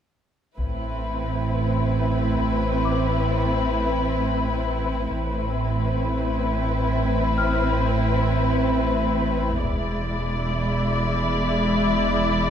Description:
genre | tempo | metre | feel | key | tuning
cinematic, suspense film score | 53 BPM | 4/4 | straight | A harmonic minor | A4 = 440 Hz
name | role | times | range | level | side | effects
muted studio violin section | melody | 0.6-12.5 s | B4 to D5 | -28 LUFS | left 5 dB | none
muted studio violin section | second line | 0.6-12.5 s | E4 | -28 LUFS | equal | none
muted studio viola section | accompaniment | 0.6-12.5 s | G#3 to C4 | -27 LUFS | right 1 dB | none
muted studio cello section | bass | 0.6-12.5 s | E2 to A2 | -30 LUFS | right 2 dB | none
muted studio double bass section | bass | 0.6-12.5 s | E1 to A1 | -28 LUFS | right 4 dB | none
punchy sub bass | drone | 0.6-12.5 s | E1 to A1 | -28 LUFS | left 1 dB | none
taiko ensemble | drums | 0.6-2.8, 9.6-11.9 s | none | -32 LUFS | left 1 dB | none
celesta | texture | 2.9-12.5 s | D6 to F6 | -32 LUFS | left 5 dB | none
room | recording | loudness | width
moderate concert hall reverb, RT60 1.9 s | minimal, uncompressed stereo recording | -21 LUFS | side -8 dB against mid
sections
0.6-12.5 A section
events
none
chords
0.6 Amadd9; 9.6 E7

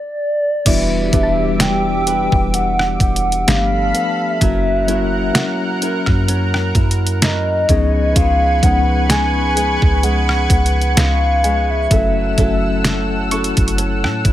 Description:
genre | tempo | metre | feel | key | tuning
contemporary R&B | 64 BPM | 4/4 | swing 54% on 16ths | E dorian | A4 = 440 Hz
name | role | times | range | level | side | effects
hollow clarinet-like synth lead | melody | 0.0-13.6 s | D5 to G#5 | -19 LUFS | equal | chorus
mellow tine electric piano | accompaniment | 0.7-14.3 s | E3 to A4 | -22 LUFS | left 4 dB | fast stereo tremolo
lush unison pad | sustained chords | 0.7-14.3 s | G3 to E6 | -24 LUFS | equal | chorus, sidechain pumping
flamenco guitar | arpeggios | 0.7-14.3 s | C#3 to B4 | -26 LUFS | right 5 dB | digital delay
soft 808-style bass | bass | 0.7-14.3 s | E1 to A2 | -19 LUFS | equal | none
detuned 8-bit digital drum machine | drums | 0.7-14.3 s | crash cymbal, hi-hat, kick drum, rim click, snare drum | -17 LUFS | equal | none
soft round pluck | texture | 0.7-14.3 s | D5 to C#6 | -30 LUFS | equal | chorus, digital delay
room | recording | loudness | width
digital ambience | none | -13 LUFS | side -13 dB against mid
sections
0.7-14.3 A section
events
stop 0.0-0.7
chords
0.0 N.C.; 0.7 Em7; 3.5 G9; 4.4 F#7; 7.7 C#7; 11.9 F#m7

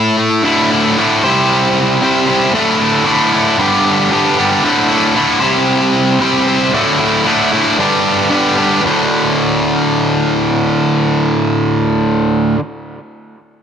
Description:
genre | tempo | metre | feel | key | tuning
rock | 114 BPM | 4/4 | straight | unclear | A4 = 441 Hz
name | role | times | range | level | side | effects
distorted electric guitar | solo | 0.0-12.6 s | D2 to C5 | -11 LUFS | equal | overdrive, analog delay
room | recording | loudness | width
little or no reverb | none | -11 LUFS | side -8 dB against mid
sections
0.4-8.8 A section; 8.8-13.0 B section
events
none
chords
0.4 Dsus2; 1.2 C; 2.5 Dsus2; 3.6 G; 4.6 Dsus2; 5.4 C; 6.7 Dsus2; 7.8 G; 8.8 D5

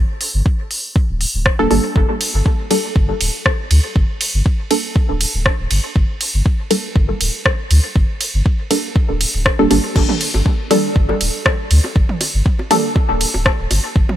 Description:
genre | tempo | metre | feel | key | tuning
dub techno | 120 BPM | 4/4 | swing 54% on 16ths | G minor | A4 = 440 Hz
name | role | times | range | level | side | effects
soft dub sub bass | bass | 0.0-14.0 s | D1 to D2 | -16 LUFS | equal | sidechain pumping
deep house drum kit | drums | 0.2-13.8 s | crash cymbal, hi-hat, ride cymbal, rim click | -20 LUFS | equal | none
electronic kick drum | drums | 0.5-14.1 s | none | -16 LUFS | equal | none
filtered dub chord stab | stabs | 1.6-12.9 s | G3 to A4 | -19 LUFS | equal | chorus, phaser, sidechain pumping, dub echo
electronic bongos and toms | percussion | 10.0-14.2 s | none | -26 LUFS | right 2 dB | sidechain pumping on perc, sidechain pumping on toms, dub echo
room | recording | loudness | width
little or no reverb | none | -14 LUFS | side -12 dB against mid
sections
0.0-14.2 A section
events
none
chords
0.0 Gmadd9

